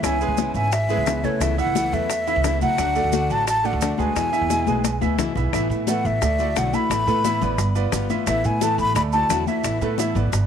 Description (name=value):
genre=latin, Cuban son and guajira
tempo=175 BPM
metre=4/4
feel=straight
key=A major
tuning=A4 = 440 Hz
part: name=breathy concert flute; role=melody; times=0.0-10.2 s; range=C#5 to B5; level=-24 LUFS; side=left 1 dB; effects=tape echo
part: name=flamenco guitar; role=accompaniment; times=0.0-10.4 s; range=B2 to F#4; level=-28 LUFS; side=left 11 dB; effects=none
part: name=clear grand piano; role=arpeggios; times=0.0-10.4 s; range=E3 to F#5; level=-27 LUFS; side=right 13 dB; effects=tape echo
part: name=upright bass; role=bass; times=0.0-10.5 s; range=G1 to C#3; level=-24 LUFS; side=right 1 dB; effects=none
part: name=bongos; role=percussion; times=0.0-10.5 s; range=none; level=-29 LUFS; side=left 11 dB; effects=none
part: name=congas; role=percussion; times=0.0-10.5 s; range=none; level=-29 LUFS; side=left 11 dB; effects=none
part: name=maracas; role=percussion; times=0.0-10.5 s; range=none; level=-34 LUFS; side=right 14 dB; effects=none
room=light reverb, studio ambience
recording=1960s-style stereo with parts hard left and right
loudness=-19 LUFS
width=side -8 dB against mid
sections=0.0-5.5 A section; 5.5-10.5 B section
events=drum fill 4.7-5.5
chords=0.0 C#m7; 1.4 Aadd9/C#; 2.8 D; 4.2 E; 5.5 Asus2; 6.2 Dadd9; 6.9 Asus2; 7.6 G7; 8.3 Asus2; 9.0 Dadd9; 9.6 Asus2